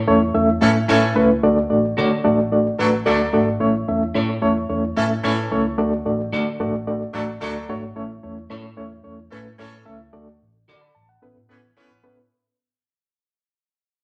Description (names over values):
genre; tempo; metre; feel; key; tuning
soul; 110 BPM; 4/4; straight; A major; A4 = 445 Hz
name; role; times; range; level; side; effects
vintage muted fingered electric bass; bass; 0.0-12.3 s; G#1 to D3; -32 LUFS; equal; none
reed electric piano; accompaniment; 0.1-12.2 s; A3 to B5; -21 LUFS; equal; fast tremolo
warm horn section; second line; 0.6-12.2 s; E3 to B4; -26 LUFS; equal; none
semi-hollow electric guitar; stabs; 0.9-11.9 s; E4 to D5; -30 LUFS; equal; tremolo
room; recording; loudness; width
wet large studio reverb, RT60 0.9 s; none; -20 LUFS; mono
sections
0.0-12.3 A section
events
fade-out 0.0-12.3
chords
0.0 A; 1.4 D; 3.6 A; 5.8 D; 8.0 A; 10.1 D; 11.2 Aadd9